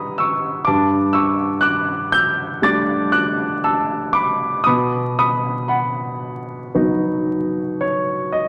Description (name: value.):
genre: classical, lyrical solo piano.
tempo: 55-62 BPM.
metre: 4/4.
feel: rubato.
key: unclear.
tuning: A4 = 440 Hz.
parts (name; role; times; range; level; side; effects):
warm grand piano; solo; 0.0-8.5 s; E2 to A6; -19 LUFS; equal; none.
room: wet concert hall reverb, RT60 1.9 s.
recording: vinyl crackle.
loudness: -19 LUFS.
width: mono.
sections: 0.0-8.5 A section.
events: grand piano fill 7.2-8.5.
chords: 0.0 Em; 0.7 Gsus2; 4.7 B.